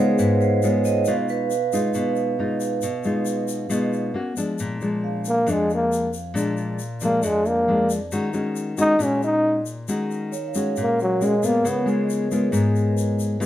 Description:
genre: bossa nova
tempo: 136 BPM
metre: 4/4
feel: straight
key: unclear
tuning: A4 = 440 Hz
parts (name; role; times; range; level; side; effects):
- nylon-string guitar; accompaniment; 0.0-13.5 s; F2 to Gb4; -22 LUFS; left 2 dB; none
- vibraphone with medium hard mallets; accompaniment; 0.0-13.5 s; Ab4 to Gb5; -26 LUFS; right 6 dB; none
- egg shaker; percussion; 0.2-13.5 s; none; -38 LUFS; left 7 dB; none
- breathy trombone; melody; 5.3-11.9 s; Gb3 to Eb4; -20 LUFS; equal; none
room: moderate large studio reverb, RT60 0.8 s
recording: none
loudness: -20 LUFS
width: side -12 dB against mid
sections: 0.0-4.6 A section; 4.6-13.5 A section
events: vibraphone solo 0.0-4.6; trombone solo 4.6-13.5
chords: 0.0 Db7; 1.1 Fm7b5/Cb; 4.2 Bb7b13; 4.6 Bb7; 8.1 Ebm11; 11.6 Db7

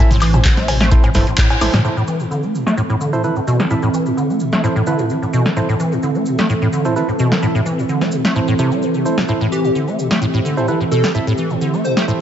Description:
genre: acid house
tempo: 129 BPM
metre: 4/4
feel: straight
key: A minor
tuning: A4 = 440 Hz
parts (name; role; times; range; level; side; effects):
- warm analog pad; sustained chords; 0.0-12.2 s; E3 to C5; -23 LUFS; right 1 dB; chorus, sidechain pumping
- acid bass, square; riff; 0.0-12.1 s; G2 to A3; -18 LUFS; equal; tube saturation, analog chorus, sidechain pumping, ping-pong delay
- percussive organ stab; stabs; 0.0-12.2 s; E4 to E5; -24 LUFS; right 3 dB; chorus, ping-pong delay
- saturated sub bass; bass; 0.0-1.8 s; E1 to A2; -18 LUFS; equal; sidechain pumping
- punchy analog drum machine; drums; 0.1-12.1 s; cowbell, crash cymbal, handclaps, hi-hat, snare drum, toms, woodblock; -20 LUFS; equal; low-pass filter on hats, low-pass filter on perc, low-pass filter on toms, low-pass filter on snare, low-pass filter on cymbals
- cabasa; percussion; 0.1-12.2 s; none; -39 LUFS; right 2 dB; none
- electronic kick drum; drums; 0.5-1.5 s; none; -14 LUFS; equal; none
- granular cloud pad; texture; 2.3-12.2 s; C4 to E5; -24 LUFS; right 2 dB; built-in reverb, sidechain pumping
- plucky unison lead; melody; 9.5-12.0 s; G4 to C5; -23 LUFS; right 1 dB; lush chorus, ping-pong delay
room: moderate lush hall reverb, RT60 1.8 s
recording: nothing above 7.8 kHz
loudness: -14 LUFS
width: side -9 dB against mid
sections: 0.0-1.8 A section; 1.8-12.2 B section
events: drop 0.0-1.8; band accent 1.4; drum fill 1.6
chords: 0.0 Am

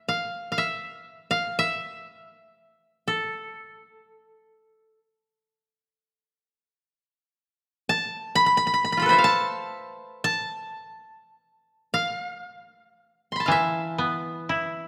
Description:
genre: japanese traditional, Japanese chamber music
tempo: free time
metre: none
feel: none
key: A hirajoshi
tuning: A4 = 440 Hz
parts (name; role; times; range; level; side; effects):
- koto; melody; 0.0-14.9 s; F4 to C6; -25 LUFS; equal; none
- koto; accompaniment; 13.5-14.9 s; E3 to E4; -27 LUFS; equal; none
room: light reverb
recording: none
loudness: -25 LUFS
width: mono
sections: 0.0-7.0 A section; 7.0-14.9 A section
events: none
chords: none

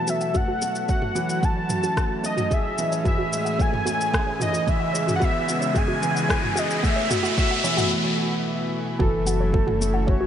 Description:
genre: piano and strings electronica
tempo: 111 BPM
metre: 4/4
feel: straight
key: F# minor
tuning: A4 = 440 Hz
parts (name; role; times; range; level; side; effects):
- warm velvety synth lead; melody; 0.0-10.3 s; A4 to A5; -26 LUFS; left 1 dB; chorus, tape echo
- lush unison pad; sustained chords; 0.0-10.3 s; A2 to B4; -32 LUFS; left 2 dB; chorus, sidechain pumping
- warbly dusty pluck; arpeggios; 0.0-10.3 s; F#4 to F#5; -31 LUFS; equal; chorus, sidechain pumping, tape echo
- warm baby grand piano; riff; 0.0-10.3 s; E3 to G#4; -27 LUFS; right 3 dB; tape echo
- deep house drum kit; drums; 0.1-9.9 s; rim click, shaker, toms; -30 LUFS; equal; studio reverb
- electronic kick drum; drums; 0.3-10.2 s; none; -24 LUFS; equal; studio reverb
- riser; sound effects; 3.1-7.9 s; none; -30 LUFS; equal; none
- warm sub bass; bass; 9.0-10.3 s; F#1; -25 LUFS; equal; sidechain pumping
room: moderate huge ambient reverb, RT60 4.9 s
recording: nothing above 10.7 kHz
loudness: -20 LUFS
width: side -9 dB against mid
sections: 0.0-9.0 A section; 9.0-10.3 B section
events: build-up 0.0-9.0; filter sweep on synth arpeggio sound 0.0-9.0; riser 3.1-7.9; break 7.9-9.0; drop 9.0-10.3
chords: 0.3 F#m7; 2.5 Amaj7; 4.7 C#m7; 6.8 B7sus4; 9.0 F#m7

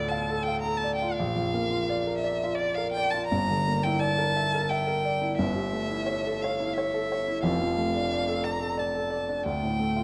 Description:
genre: classical, romantic duo for violin and grand piano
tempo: 87 BPM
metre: 3/4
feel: uneven beats, rubato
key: D minor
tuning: A4 = 436 Hz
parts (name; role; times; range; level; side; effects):
- warm violin; melody; 0.0-10.0 s; D5 to Bb5; -32 LUFS; equal; none
- warm baby grand piano; accompaniment; 0.0-10.0 s; F1 to F5; -29 LUFS; equal; none
room: wet recital hall reverb, RT60 1.4 s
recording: dark, warm production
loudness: -28 LUFS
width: mono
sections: 0.0-10.0 A section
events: none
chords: 0.0 Dm; 1.2 Bb; 3.3 Em7b5/G; 5.4 A7/G; 7.4 Dm/F; 9.5 Dm

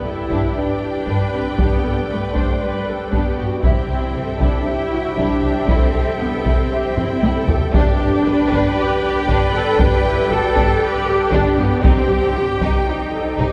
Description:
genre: cinematic, epic orchestral film score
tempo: 117 BPM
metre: 4/4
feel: straight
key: G major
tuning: A4 = 439 Hz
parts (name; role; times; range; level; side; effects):
- rich symphonic violin section; melody; 0.0-13.5 s; G5; -32 LUFS; equal; none
- warm symphonic violin section; second line; 0.0-13.5 s; D4 to E5; -28 LUFS; equal; none
- rich symphonic viola section; accompaniment; 0.0-13.5 s; E4 to C5; -27 LUFS; equal; none
- mellow woodwind section; sustained chords; 0.0-13.5 s; G3 to G5; -30 LUFS; equal; none
- rich symphonic cello section; bass; 0.0-13.5 s; G3 to B4; -24 LUFS; equal; none
- rich symphonic double bass section; bass; 0.0-13.5 s; G1 to G2; -26 LUFS; equal; none
- taiko ensemble; drums; 0.3-13.5 s; none; -23 LUFS; equal; none
- mellow French horn section; sustained chords; 0.6-13.5 s; G4 to E5; -33 LUFS; equal; none
room: wet cathedral reverb, RT60 4.4 s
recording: recorded in a church or concert hall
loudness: -18 LUFS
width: mono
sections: 0.0-13.5 A section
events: drum fill 7.0-7.7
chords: 0.0 G; 3.6 C; 7.7 G; 11.8 Cm

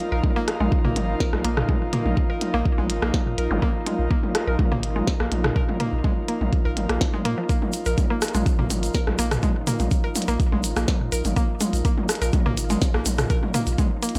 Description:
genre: minimal techno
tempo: 124 BPM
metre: 4/4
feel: straight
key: unclear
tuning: A4 = 440 Hz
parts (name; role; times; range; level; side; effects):
- airy breathy pad; texture; 0.0-14.2 s; Eb4 to F5; -32 LUFS; equal; chorus, sidechain pumping
- mallet-like synth pluck; riff; 0.1-14.1 s; F3 to Bb4; -32 LUFS; equal; chorus, sidechain pumping, tape echo
- punchy sub bass; bass; 0.1-14.2 s; Ab1 to Bb2; -28 LUFS; equal; sidechain pumping
- electronic kick drum; drums; 0.2-13.9 s; none; -25 LUFS; equal; none
- techno drum kit; percussion; 0.2-14.2 s; rim click, toms; -30 LUFS; equal; none
- minimal click drum kit; drums; 0.5-14.2 s; hi-hat, snare drum; -32 LUFS; equal; none
- zap; sound effects; 3.5-3.6 s; none; -36 LUFS; equal; none
- tube shaker; percussion; 7.5-14.2 s; none; -36 LUFS; equal; none
room: light reverb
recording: none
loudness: -23 LUFS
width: mono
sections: 0.0-14.2 A section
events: none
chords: 0.0 Bbsus4

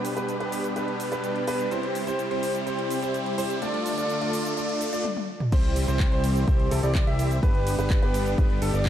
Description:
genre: EDM, festival progressive house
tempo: 126 BPM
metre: 4/4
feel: straight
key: C major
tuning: A4 = 444 Hz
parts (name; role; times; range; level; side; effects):
- rich chamber string section; sustained chords; 0.0-8.9 s; B2 to A4; -34 LUFS; left 1 dB; sidechain pumping
- warm baby grand piano; arpeggios; 0.0-8.9 s; A4 to E5; -32 LUFS; right 1 dB; sidechain pumping, digital delay
- supersaw chords; riff; 0.0-8.9 s; G3 to E5; -28 LUFS; equal; sidechain pumping, digital delay
- house drum kit; drums; 0.0-8.9 s; cabasa, crash cymbal, handclaps, hi-hat, ride cymbal, toms; -34 LUFS; equal; none
- riser; sound effects; 0.0-5.0 s; none; -38 LUFS; equal; none
- fat analog bass; bass; 5.5-8.9 s; G1 to C2; -26 LUFS; equal; sidechain pumping
- electronic kick drum; drums; 5.5-8.9 s; none; -23 LUFS; equal; none
room: moderate lush hall reverb, RT60 2.0 s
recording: dark, warm production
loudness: -23 LUFS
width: side -11 dB against mid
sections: 0.0-5.5 A section; 5.5-8.9 B section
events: build-up 0.0-5.5; riser 0.0-5.0; filter sweep on grand piano 0.0-5.5; drum fill 5.0-5.5; drop 5.5-8.9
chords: 0.0 G; 1.7 C; 3.6 Dm; 5.5 C; 7.4 G

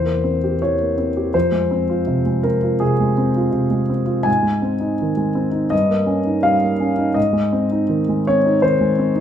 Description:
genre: classical, romantic character piece for solo piano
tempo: 82 BPM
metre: 4/4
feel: rubato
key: F minor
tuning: A4 = 439 Hz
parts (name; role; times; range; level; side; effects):
- warm grand piano; solo; 0.0-9.2 s; E2 to Ab5; -16 LUFS; equal; none
room: wet large studio reverb, RT60 1.2 s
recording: none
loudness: -16 LUFS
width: side -9 dB against mid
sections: 0.0-9.2 A section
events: none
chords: 0.0 C7/E; 1.3 Fm; 4.3 Ab; 5.7 Eb7/G; 7.2 Ab

